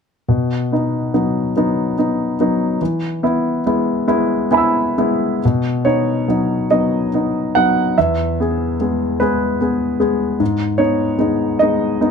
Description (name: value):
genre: neoclassical minimalist piano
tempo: 42-51 BPM (dotted quarters)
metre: 6/8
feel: rubato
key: B major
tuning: A4 = 440 Hz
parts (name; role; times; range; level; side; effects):
- clear grand piano; solo; 0.3-12.1 s; E2 to E6; -15 LUFS; left 1 dB; none
room: light reverb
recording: close, detailed microphones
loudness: -15 LUFS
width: side -6 dB against mid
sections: 0.3-5.4 A section; 5.4-12.1 B section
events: none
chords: 0.3 B; 2.8 E; 5.4 B; 8.0 E; 10.4 G#m